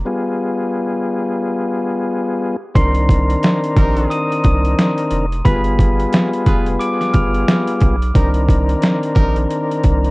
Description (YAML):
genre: hip hop, boom-bap hip-hop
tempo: 89 BPM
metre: 4/4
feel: swing 59% on 16ths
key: C minor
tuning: A4 = 439 Hz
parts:
  - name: round analog bass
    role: bass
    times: 0.0-10.1 s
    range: F1 to C2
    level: -18 LUFS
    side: equal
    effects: transformer saturation
  - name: tonewheel organ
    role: accompaniment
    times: 0.1-10.1 s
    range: Eb3 to Bb4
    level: -19 LUFS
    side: left 2 dB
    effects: chorus vibrato, high-pass filter, low-pass filter
  - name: glockenspiel with rubber mallets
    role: melody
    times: 2.8-8.1 s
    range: B5 to F7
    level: -24 LUFS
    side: equal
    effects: high-pass filter, low-pass filter, analog delay
  - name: warm trumpet section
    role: stabs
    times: 2.8-9.4 s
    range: Eb4 to B4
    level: -30 LUFS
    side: right 1 dB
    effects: high-pass filter, low-pass filter, analog delay
  - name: boom bap sampler-style drum kit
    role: drums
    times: 2.8-10.1 s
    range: hi-hat, kick drum, snare drum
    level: -15 LUFS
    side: equal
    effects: overdrive, vintage 12-bit sampler grit
room: light reverb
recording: worn, warbling old tape, cassette tape, warbly pitch drift, nothing above 10.3 kHz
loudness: -14 LUFS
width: side -23 dB against mid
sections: 0.0-2.8 A section; 2.8-10.1 B section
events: break 0.1-2.8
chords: 0.1 G7b9; 2.8 Cm9; 5.5 G7b9; 8.2 Cm9